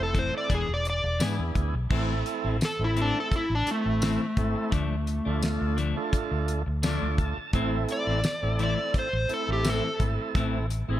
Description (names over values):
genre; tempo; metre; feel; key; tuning
straight-eighth soul blues; 85 BPM; 4/4; swing 54% on 16ths; A harmonic minor; A4 = 439 Hz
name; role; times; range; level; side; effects
overdriven slide guitar; melody; 0.0-10.0 s; A3 to D5; -29 LUFS; left 1 dB; none
tonewheel organ; accompaniment; 0.0-11.0 s; A3 to A5; -33 LUFS; right 4 dB; slow rotary speaker, overdrive
clean electric guitar; stabs; 0.0-11.0 s; A2 to G#4; -34 LUFS; left 5 dB; spring reverb
vintage muted fingered electric bass; bass; 0.0-11.0 s; E1 to G#2; -28 LUFS; equal; none
damped 70s drum kit; drums; 0.1-10.9 s; crash cymbal, hi-hat, kick drum, snare drum, tambourine; -29 LUFS; equal; none
room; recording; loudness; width
light reverb; none; -24 LUFS; side -13 dB against mid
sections
0.0-1.9 A section; 1.9-11.0 B section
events
electric slide guitar solo 1.9-11.0; tonewheel organ fill 6.5-7.5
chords
0.5 E7; 1.9 Am; 4.7 Dm; 7.5 Am